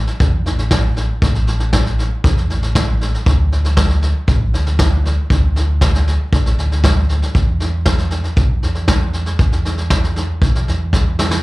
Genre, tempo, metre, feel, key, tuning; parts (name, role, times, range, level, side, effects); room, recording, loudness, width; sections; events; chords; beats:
indie folk with a building arrangement; 118 BPM; 4/4; straight; A4 = 440 Hz
fingered electric bass; bass; 0.0-11.3 s; A1 to E2; -17 LUFS; equal
vintage brush drum kit; drums; 0.1-11.4 s; kick drum, snare drum; -16 LUFS; equal
little or no reverb; live gig heard through the venue's PA, club reverb; -13 LUFS; side -20 dB against mid
0.0-11.4 A section
drum fill 10.9-11.4
0.20 0.72 | 1.23 1.74 2.25 2.76 | 3.27 3.78 4.29 4.80 | 5.31 5.82 6.33 6.84 | 7.35 7.86 8.37 8.88 | 9.39 9.91 10.42 10.93